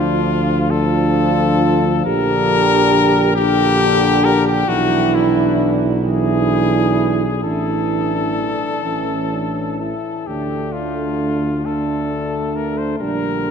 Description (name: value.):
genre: classical, hymn-like piece for brass band.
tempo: 41-46 BPM (dotted quarters).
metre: 6/8.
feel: rubato.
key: D minor.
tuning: A4 = 441 Hz.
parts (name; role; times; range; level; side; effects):
warm cornet; melody; 0.0-13.5 s; E4 to C5; -20 LUFS; left 6 dB; none.
dark French horn section; second line; 0.0-13.5 s; C#4 to G4; -21 LUFS; right 6 dB; none.
clear euphonium; accompaniment; 0.0-13.5 s; G3 to E4; -23 LUFS; left 3 dB; none.
mellow trombone; accompaniment; 0.0-13.5 s; D3 to F3; -24 LUFS; right 3 dB; none.
dark tuba; bass; 0.0-13.5 s; A1 to D2; -21 LUFS; equal; none.
room: wet cathedral reverb, RT60 5.8 s.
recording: dark, warm production.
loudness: -15 LUFS.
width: side -6 dB against mid.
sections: 0.0-13.5 A section.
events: none.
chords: 0.0 Dm; 2.1 Gm/Bb; 4.7 E7/B; 7.4 Asus4; 8.8 A; 10.3 Dm; 13.0 Gm/Bb.